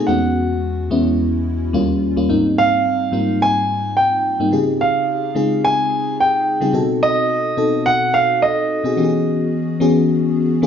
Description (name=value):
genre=pop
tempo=108 BPM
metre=4/4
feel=swing 54% on 16ths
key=unclear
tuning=A4 = 439 Hz
part: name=warm concert grand piano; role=melody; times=0.0-10.6 s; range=D#5 to Ab5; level=-18 LUFS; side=right 2 dB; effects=none
part: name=FM electric piano with soft pad layer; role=accompaniment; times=0.0-10.7 s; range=Eb2 to A4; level=-17 LUFS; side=left 2 dB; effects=chorus
room=moderate large studio reverb, RT60 1.1 s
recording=band playing live in one room, nothing above 7.6 kHz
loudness=-15 LUFS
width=side -8 dB against mid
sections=0.0-10.7 A section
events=none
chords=0.1 E69; 1.7 Eb9; 2.3 Abmaj9; 4.5 Dbmaj9#11; 6.7 B7b9; 9.0 E69